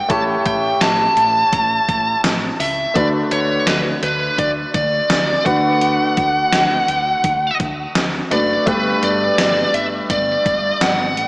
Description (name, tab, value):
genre	1980s-style pop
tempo	84 BPM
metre	4/4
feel	straight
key	B minor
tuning	A4 = 445 Hz
part	high-gain lead guitar	melody	0.0-11.3 s	B4 to A5	-17 LUFS	equal	distortion
part	warm concert grand piano	accompaniment	0.0-11.3 s	G2 to C#5	-21 LUFS	equal	slapback echo
part	woody fretless electric bass	bass	0.1-11.3 s	F#1 to D2	-27 LUFS	equal	none
part	gated 80s digital drum machine	drums	0.1-11.3 s	hi-hat, kick drum, snare drum, tambourine	-21 LUFS	equal	gated reverb, gated reverb snare, overdrive
room	wet lush hall reverb, RT60 2.9 s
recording	big arena sound, small speaker sound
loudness	-14 LUFS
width	side -25 dB against mid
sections	0.0-11.3 A section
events	none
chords	0.1 A7; 3.0 D6; 5.5 Bm7/D; 8.7 Gadd9